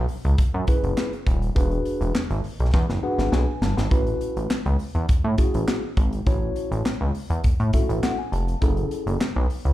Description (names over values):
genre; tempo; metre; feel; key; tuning
early-eighties boogie funk; 102 BPM; 4/4; straight; unclear; A4 = 440 Hz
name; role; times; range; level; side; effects
chorused synth bass; bass; 0.0-9.7 s; D#1 to A2; -22 LUFS; equal; none
modern studio drum kit; drums; 0.1-9.7 s; handclaps, hi-hat, kick drum, snare drum; -23 LUFS; equal; none
mellow tine electric piano; accompaniment; 0.7-9.2 s; C#4 to A5; -28 LUFS; left 1 dB; slow stereo tremolo, slapback echo
room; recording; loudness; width
studio reverb; live gig heard through the venue's PA, club reverb; -20 LUFS; side -15 dB against mid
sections
0.0-9.7 A section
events
drum fill 2.7-3.9; tine electric piano fill 2.7-3.9, 7.4-8.6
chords
0.0 F#7sus2; 1.6 E7; 3.9 A6; 8.6 F#m9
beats
0.38 0.97 | 1.56 2.15 2.74 3.32 | 3.91 4.50 5.09 5.68 | 6.27 6.85 7.44 8.03 | 8.62 9.21